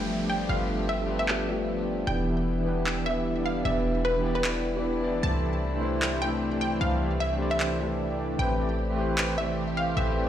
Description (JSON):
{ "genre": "future bass", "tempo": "152 BPM", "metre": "4/4", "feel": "swing 55% on 16ths, half-time", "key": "A minor", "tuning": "A4 = 442 Hz", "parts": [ { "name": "wide unison pluck", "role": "melody", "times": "0.0-10.1 s", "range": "B4 to A5", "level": "-32 LUFS", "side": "equal", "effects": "vintage 12-bit sampler grit, digital delay" }, { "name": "overdriven tine electric piano", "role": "accompaniment", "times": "0.0-10.3 s", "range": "C3 to D5", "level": "-34 LUFS", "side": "left 3 dB", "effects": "phaser, digital delay" }, { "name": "warm studio string section", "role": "sustained chords", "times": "0.0-10.3 s", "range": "C3 to G4", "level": "-37 LUFS", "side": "left 1 dB", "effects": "none" }, { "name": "soft supersaw", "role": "riff", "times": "0.0-10.3 s", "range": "E3 to E5", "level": "-29 LUFS", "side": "right 1 dB", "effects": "low-pass filter" }, { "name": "warm 808-style bass", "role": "bass", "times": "0.0-10.3 s", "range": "E1 to C2", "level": "-31 LUFS", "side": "equal", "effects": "none" }, { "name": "downlifter", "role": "sound effects", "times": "0.0-2.1 s", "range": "none", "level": "-43 LUFS", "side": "right 1 dB", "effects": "none" }, { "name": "electronic handclaps", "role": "drums", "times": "1.3-9.3 s", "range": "none", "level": "-31 LUFS", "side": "equal", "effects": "low-pass filter on hats, low-pass filter on snare, low-pass filter on toms, low-pass filter on cymbals" } ], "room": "light reverb, digital ambience", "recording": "played on a big sound system in a bare room, large studio reverb", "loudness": "-25 LUFS", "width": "side -10 dB against mid", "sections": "0.0-10.3 A section", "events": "none", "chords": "0.0 G9; 2.1 Em7; 5.2 C69; 8.4 Am9", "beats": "0.10 | 0.49 0.89 1.28 1.68 | 2.07 2.47 2.86 3.26 | 3.65 4.05 4.44 4.84 | 5.23 5.63 6.02 6.42 | 6.81 7.21 7.60 8.00 | 8.39 8.78 9.18 9.57 | 9.97" }